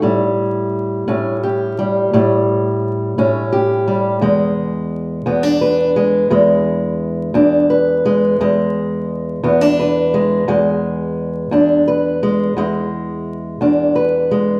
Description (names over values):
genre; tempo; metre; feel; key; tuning
blues; 58 BPM (dotted quarters); 12/8; straight; E mixolydian; A4 = 440 Hz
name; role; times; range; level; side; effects
fingerpicked steel-string acoustic guitar; solo; 0.0-14.6 s; E2 to B4; -16 LUFS; equal; none
room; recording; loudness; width
wet recital hall reverb, RT60 1.4 s; recorded in a church or concert hall, vinyl crackle; -16 LUFS; mono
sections
0.0-12.6 A section; 12.6-14.6 A section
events
none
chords
0.0 A7; 4.2 E7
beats
| 0.04 1.08 2.12 3.17 | 4.21 5.25 6.30 7.34 | 8.38 9.43 10.47 11.52 | 12.56 13.61